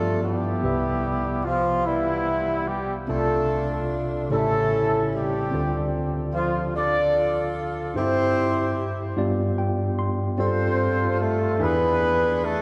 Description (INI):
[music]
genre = gospel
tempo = 49 BPM (dotted quarters)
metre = 6/8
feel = straight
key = C major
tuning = A4 = 440 Hz
[part]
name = mellow horn section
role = melody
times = 0.0-12.6 s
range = E3 to D5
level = -26 LUFS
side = equal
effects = analog delay
[part]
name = barky tine electric piano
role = accompaniment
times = 0.0-12.6 s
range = A1 to C6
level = -28 LUFS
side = equal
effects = overdrive
[sound]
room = wet cathedral reverb, RT60 4.4 s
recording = dreamy mix soaked in reverb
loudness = -24 LUFS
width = mono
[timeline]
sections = 0.6-10.4 A section; 10.4-12.6 B section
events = tine electric piano fill 9.2-10.4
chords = 0.0 G7; 0.6 Cmaj7; 3.1 F6/C; 4.3 A7; 5.5 Dm7; 8.0 C/G; 9.2 G7; 10.4 G9sus4; 11.6 E7